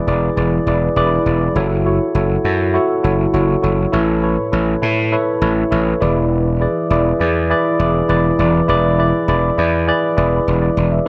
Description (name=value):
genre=1980s-style pop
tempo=101 BPM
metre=4/4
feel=straight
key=unclear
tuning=A4 = 440 Hz
part: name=tine electric piano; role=accompaniment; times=0.0-11.1 s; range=A2 to E5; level=-18 LUFS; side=equal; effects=phaser
part: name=gritty slap bass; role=bass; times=0.1-11.0 s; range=E1 to A2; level=-20 LUFS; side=equal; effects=overdrive
room=moderate lush hall reverb, RT60 2.7 s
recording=none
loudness=-16 LUFS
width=mono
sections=0.0-1.6 A section; 1.6-11.1 B section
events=none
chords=0.0 E7; 1.6 F#m7; 3.9 Aadd9; 6.0 E7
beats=0.37 0.96 | 1.56 2.15 2.75 3.34 | 3.94 4.53 5.12 5.72 | 6.31 6.91 7.50 8.09 | 8.69 9.28 9.88 10.47 | 11.06